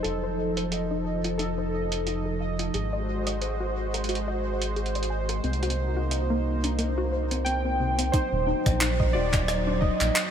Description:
IDM; 89 BPM; 4/4; swing 56% on 16ths; Eb melodic minor; A4 = 439 Hz
warbly lo-fi synth keys; melody; 0.0-2.4, 7.4-10.3 s; A4 to G5; -31 LUFS; right 1 dB; chorus, ping-pong delay
warm analog pad; sustained chords; 0.0-10.3 s; F3 to C5; -31 LUFS; equal; chorus
warbly dusty pluck; arpeggios; 0.0-10.0 s; C3 to Ab5; -33 LUFS; left 2 dB; chorus, tape echo
round analog bass; bass; 0.0-10.1 s; Eb1 to C2; -29 LUFS; equal; tube saturation
jungle sampler-style drum kit; drums; 0.0-10.3 s; handclaps, hi-hat, rim click; -30 LUFS; right 1 dB; low-pass filter on snare, low-pass filter on hats, low-pass filter on perc, low-pass filter on room
pulsing gated texture; texture; 0.0-8.2 s; Eb5; -40 LUFS; right 5 dB; chorus, built-in reverb
electronic kick drum; drums; 8.1-10.0 s; -25 LUFS; equal; overdrive
moderate huge ambient reverb, RT60 8.3 s; dreamy mix soaked in reverb; -24 LUFS; side -8 dB against mid
0.0-8.1 A section; 8.1-10.3 B section
0.0 F7; 2.7 Ab7; 5.4 Cm7; 8.1 Ebm6

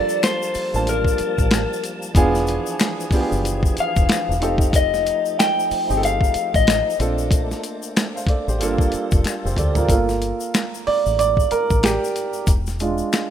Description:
R&B, neo-soul; 93 BPM; 4/4; swing 59% on 16ths; G minor; A4 = 440 Hz
electric guitar through a small old amp; melody; 0.0-7.0 s; Bb4 to G5; -21 LUFS; left 3 dB
warm upright piano; accompaniment; 0.0-13.3 s; G#3 to A5; -23 LUFS; right 4 dB
tonewheel organ; sustained chords; 0.0-9.9 s; E3 to A5; -30 LUFS; equal; overdrive, chorus vibrato, slow rotary speaker
tube shaker and finger snaps; percussion; 0.1-13.3 s; -31 LUFS; left 7 dB
boom bap sampler-style drum kit; drums; 0.2-13.3 s; hi-hat, kick drum, snare drum, toms; -20 LUFS; equal
deep dub fingered electric bass; bass; 0.6-13.0 s; E1 to D2; -24 LUFS; equal
light reverb; rough home demo mix; -17 LUFS; side -10 dB against mid
0.0-9.9 A section; 9.9-13.3 B section
drum fill 9.3-9.9; upright piano solo 9.9-13.3
0.0 Gm9; 2.2 E7b9; 4.4 F9; 7.0 Bbmaj9; 8.6 Gm9; 12.5 E7b9

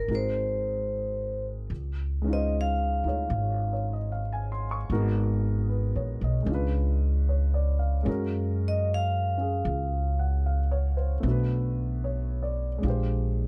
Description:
jazz ballad; 75 BPM; 4/4; swing 68% on 8ths; Db major; A4 = 440 Hz
vibraphone with medium hard mallets; melody; 0.0-3.9, 8.7-10.2 s; Bb4 to F5; -32 LUFS; equal
warm baby grand piano; accompaniment; 0.0-13.5 s; Gb3 to Db6; -35 LUFS; equal
upright bass; bass; 0.0-13.5 s; Ab1 to Gb2; -29 LUFS; equal
little or no reverb; close, detailed microphones; -28 LUFS; mono
0.0-1.7 A section; 1.7-13.5 B section
vibraphone solo 1.7-13.5
0.1 Ab7; 1.7 Dbmaj7; 4.9 Abm9; 6.5 Db7b9; 8.1 Gbmaj9; 11.2 Cbm7; 12.8 Bb13

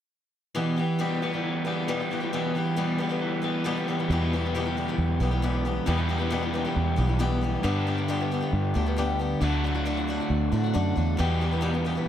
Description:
folk rock and heartland rock; 136 BPM; 4/4; straight; E minor; A4 = 440 Hz
picked swing-style acoustic guitar; accompaniment; 0.5-12.1 s; E2 to G4; -30 LUFS; left 4 dB
crunchy overdriven guitar; riff; 0.6-12.1 s; E2 to G4; -28 LUFS; right 1 dB
fingered electric bass; bass; 4.1-12.0 s; B1 to A2; -26 LUFS; right 1 dB
moderate studio reverb, RT60 0.7 s; -24 LUFS; side -10 dB against mid
0.6-4.1 A section; 4.1-12.1 B section
0.6 Em; 7.7 G; 9.4 D; 11.2 Em

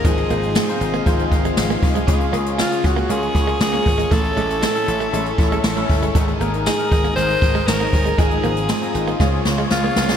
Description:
1980s-style pop; 118 BPM; 4/4; straight; Db major; A4 = 440 Hz
raspy alto saxophone; melody; 0.0-10.2 s; F4 to C5; -23 LUFS; equal; shimmer reverb
bright tine electric piano; accompaniment; 0.0-10.2 s; Ab2 to Ab5; -24 LUFS; left 5 dB; ensemble chorus, shimmer reverb
thick fuzz guitar; accompaniment; 0.0-10.2 s; F2 to F4; -31 LUFS; equal; distortion, wide subtle chorus, shimmer reverb
sweeping resonant pad; sustained chords; 0.0-10.2 s; F4 to Eb6; -30 LUFS; equal; chorus, shimmer reverb
slap bass; bass; 0.0-10.2 s; G1 to Db2; -24 LUFS; equal
jazz brush drum kit; drums; 0.0-10.2 s; hi-hat, kick drum, snare drum, tambourine; -20 LUFS; equal; gated reverb
direct-recorded clean electric guitar; riff; 0.1-10.2 s; F3 to Db4; -27 LUFS; right 6 dB; lush chorus, shimmer reverb
moderate lush hall reverb, RT60 2.3 s; bright 1980s-style digital production; -16 LUFS; side -8 dB against mid
0.0-10.2 A section
drum fill 9.2-10.2
0.0 Fm7/Ab; 2.1 Db; 4.1 A; 6.1 Absus2; 8.2 Fm7/Ab; 9.2 Db

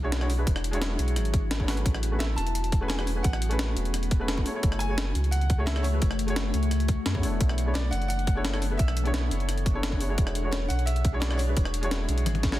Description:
liquid drum and bass; 173 BPM; 4/4; straight; A major; A4 = 440 Hz
felt-muted upright piano; accompaniment; 0.0-12.6 s; G#3 to C#5; -34 LUFS; equal; digital delay
glassy FM pad; sustained chords; 0.0-12.6 s; E3 to C#5; -36 LUFS; left 4 dB; ensemble chorus, built-in reverb, sidechain pumping
sub bass with octave; bass; 0.0-12.6 s; E1 to F#2; -27 LUFS; equal
breakbeat sampler-style drum kit; drums; 0.1-12.6 s; hi-hat, rim click, snare drum, toms; -32 LUFS; left 1 dB
electronic kick drum; drums; 0.5-12.5 s; -25 LUFS; equal
bright grand piano; melody; 2.2-12.6 s; C#5 to A5; -36 LUFS; right 1 dB; dub echo
light reverb; dense, heavily limited modern master; -24 LUFS; side -15 dB against mid
0.0-12.6 A section
drum fill 1.7, 12.3-12.6
0.0 E13; 1.9 Amaj13; 4.5 F#m9; 7.4 Bm11; 10.2 E13

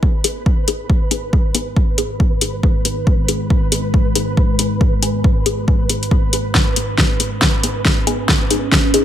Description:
deep dubstep; 138 BPM; 4/4; swing 61% on 16ths, half-time; G# minor; A4 = 441 Hz
deep dark ambient pad; sustained chords; 1.2-9.0 s; G#3 to B4; -23 LUFS; right 1 dB; chorus, built-in reverb
filtered dub chord stab; stabs; 0.0-9.0 s; B3 to G#4; -24 LUFS; left 4 dB; phaser, dub echo
electronic kick drum; drums; 0.0-8.8 s; -16 LUFS; equal; overdrive, small room reverb
flickering grainy texture; texture; 0.0-9.0 s; B4; -26 LUFS; right 2 dB; built-in reverb
deep house drum kit; drums; 0.2-9.0 s; hi-hat, snare drum; -17 LUFS; left 1 dB; overdrive, small room reverb
digital ambience; -14 LUFS; side -11 dB against mid
0.0-9.0 A section
build-up 0.0-9.0; filter sweep on ambient pad 0.0-9.0; drum fill 6.5-9.0
0.0 G#m

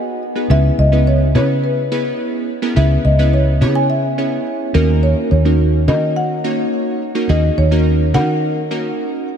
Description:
dance-pop; 106 BPM; 4/4; straight; A4 = 436 Hz
marimba with medium mallets; melody; 0.0-9.2 s; B4 to G#5; -21 LUFS; left 1 dB; ping-pong delay
glassy digital keys; accompaniment; 0.0-9.3 s; A#3 to C#5; -19 LUFS; right 1 dB; chorus
vintage muted fingered electric bass; bass; 0.5-8.9 s; C#2 to D#3; -14 LUFS; equal
moderate cathedral reverb, RT60 5.3 s; dreamy mix soaked in reverb; -13 LUFS; side -8 dB against mid
0.0-9.4 A section
0.0 G#m7; 0.5 C#m7; 4.7 D#m7

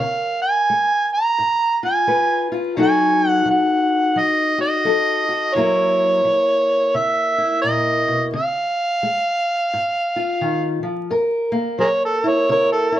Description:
acoustic country blues, solo or duo; 86 BPM; 4/4; swing 61% on 8ths; A4 = 440 Hz
overdriven harmonica; melody; 0.0-13.0 s; G#4 to A#5; -17 LUFS; right 1 dB; plate reverb
fingerpicked steel-string acoustic guitar; accompaniment; 0.0-13.0 s; F#2 to B4; -21 LUFS; left 2 dB
moderate studio reverb, RT60 0.6 s; vinyl crackle, lossy compression artefacts; -16 LUFS; side -12 dB against mid
0.0-11.1 A section; 11.1-13.0 B section
harmonica solo 11.1-13.0
0.0 C#7; 2.8 B7; 5.6 F#7; 8.3 C#; 11.1 F#7

